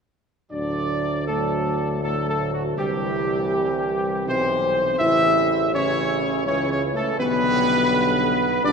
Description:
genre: classical, ceremonial fanfare.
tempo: 82 BPM.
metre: 3/4.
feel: straight.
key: D major.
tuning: A4 = 440 Hz.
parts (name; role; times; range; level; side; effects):
mellow trumpet section; melody; 0.5-8.7 s; F#4 to E5; -22 LUFS; right 1 dB; none.
clear trombone section; sustained chords; 0.5-8.7 s; A2 to D4; -29 LUFS; right 3 dB; none.
warm French horn section; sustained chords; 0.5-8.7 s; F#3 to E4; -26 LUFS; left 5 dB; none.
warm tuba; bass; 0.5-8.7 s; A1 to D2; -27 LUFS; right 2 dB; none.
room: wet cathedral reverb, RT60 5.1 s.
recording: minimal, uncompressed stereo recording.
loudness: -19 LUFS.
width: side -5 dB against mid.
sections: 0.5-8.7 A section.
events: none.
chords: 0.5 D; 2.8 C; 5.0 A; 7.2 G/B.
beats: | 0.52 1.28 2.02 | 2.77 3.51 4.27 | 5.01 5.74 6.47 | 7.20 7.92 8.64.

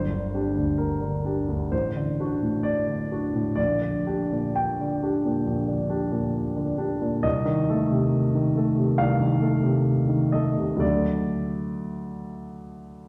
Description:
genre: classical, romantic character piece for solo piano.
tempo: 58-70 BPM.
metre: 4/4.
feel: rubato.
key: G minor.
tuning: A4 = 440 Hz.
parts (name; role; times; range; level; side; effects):
warm grand piano; solo; 0.0-13.1 s; G1 to G5; -25 LUFS; equal; none.
room: wet recital hall reverb, RT60 1.7 s.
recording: heard from further back in the room.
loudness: -25 LUFS.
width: mono.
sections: 0.0-13.1 A section.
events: none.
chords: 0.0 Gm; 1.7 D7/A; 3.6 Gm/Bb; 7.2 Adim/C; 10.8 D.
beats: 0.80 1.72 2.65 | 3.57 4.56 5.47 6.36 | 7.24 8.13 9.00 9.88 | 10.81 11.79 12.78.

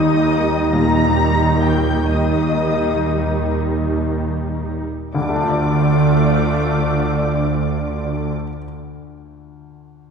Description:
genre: cinematic, emotional film score for orchestra.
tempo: 36-46 BPM (dotted quarters).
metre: 6/8.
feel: rubato.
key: unclear.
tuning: A4 = 444 Hz.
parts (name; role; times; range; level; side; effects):
muted symphonic violin section; melody; 0.0-8.3 s; D6 to Bb6; -30 LUFS; left 4 dB; none.
muted symphonic violin section; second line; 0.0-8.3 s; D5 to Bb5; -24 LUFS; left 2 dB; none.
felt-muted upright piano; accompaniment; 0.0-10.1 s; D2 to D5; -26 LUFS; left 4 dB; none.
muted symphonic viola section; accompaniment; 0.0-8.3 s; G3 to F4; -23 LUFS; equal; none.
muted symphonic cello section; bass; 0.0-8.3 s; D3 to Eb3; -21 LUFS; right 3 dB; none.
muted symphonic double bass section; bass; 0.0-8.3 s; D2 to Eb2; -21 LUFS; right 1 dB; none.
room: wet scoring stage reverb, RT60 2.2 s.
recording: heard from further back in the room.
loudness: -16 LUFS.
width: side -6 dB against mid.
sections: 0.0-5.1 A section; 5.1-8.3 B section.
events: slowing down 0.0-5.1.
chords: 0.0 Eb; 5.1 Dm.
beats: 0.74 | 2.10 3.55 | 5.15 6.74.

